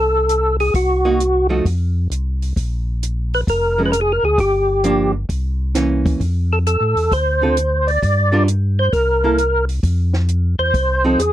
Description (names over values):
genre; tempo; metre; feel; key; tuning
soul jazz organ trio; 132 BPM; 4/4; swing 67% on 8ths; unclear; A4 = 440 Hz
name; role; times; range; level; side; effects
percussive tonewheel organ; melody; 0.0-11.3 s; Gb4 to D5; -16 LUFS; equal; slow rotary speaker, chorus vibrato
mellow tonewheel organ; bass; 0.0-11.3 s; F1 to A2; -19 LUFS; equal; slow rotary speaker
compact cocktail drum kit; drums; 0.3-11.3 s; hi-hat, kick drum, snare drum; -23 LUFS; equal; none
archtop guitar, miked and amplified; accompaniment; 1.0-11.2 s; D3 to Bb4; -18 LUFS; right 3 dB; none
room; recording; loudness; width
light reverb; dry, close 1970s-style studio recording; -15 LUFS; side -12 dB against mid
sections
0.0-11.3 A section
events
none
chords
0.0 F (rootless); 0.7 Cm7b5; 1.7 F5; 2.6 Bb7(no3); 4.4 Gm7; 5.3 C7b9; 6.2 Fmaj7; 7.1 Dm7; 8.0 Gm7; 8.9 C6; 9.8 F5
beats
0.29 | 0.74 1.20 1.66 2.11 | 2.57 3.02 3.48 3.93 | 4.39 4.84 5.30 5.75 | 6.21 6.66 7.12 7.57 | 8.02 8.48 8.93 9.39 | 9.84 10.29 10.75 11.20